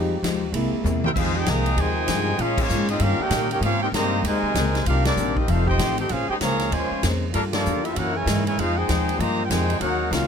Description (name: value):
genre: jazz, big band swing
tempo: 194 BPM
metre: 4/4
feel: swing 62% on 8ths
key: F minor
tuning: A4 = 435 Hz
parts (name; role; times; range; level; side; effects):
- picked steel-string acoustic guitar; accompaniment; 0.0-10.3 s; Gb2 to C5; -30 LUFS; left 6 dB; none
- warm baby grand piano; accompaniment; 0.0-1.0 s; G3 to F5; -28 LUFS; right 4 dB; none
- clear trombone section; sustained chords; 0.0-10.3 s; Bb2 to Bb4; -33 LUFS; left 1 dB; none
- upright bass; bass; 0.0-10.3 s; F1 to Bb2; -25 LUFS; equal; none
- swinging big-band drum kit; drums; 0.2-10.2 s; crash cymbal, hi-hat, kick drum, ride cymbal, snare drum, toms; -28 LUFS; equal; none
- warm trumpet section; melody; 1.1-10.3 s; Bb3 to Bb5; -26 LUFS; equal; none
- clear trombone section; second line; 1.1-10.3 s; C3 to Ab4; -28 LUFS; right 1 dB; none
room: little or no reverb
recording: close, detailed microphones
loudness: -20 LUFS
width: side -7 dB against mid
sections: 0.0-1.2 A section; 1.2-10.3 B section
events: grand piano solo 0.0-1.2; drum fill 0.9-1.2; band accent 2.5, 5.0, 7.5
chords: 0.0 Fm9; 0.5 C7b13; 1.2 Fm9; 2.4 Bbm7; 3.0 Eb7; 3.6 Abmaj9; 4.9 Cm7; 5.5 F7; 6.1 Bbm9; 7.3 Gm9; 8.0 Gb13; 8.6 Fm9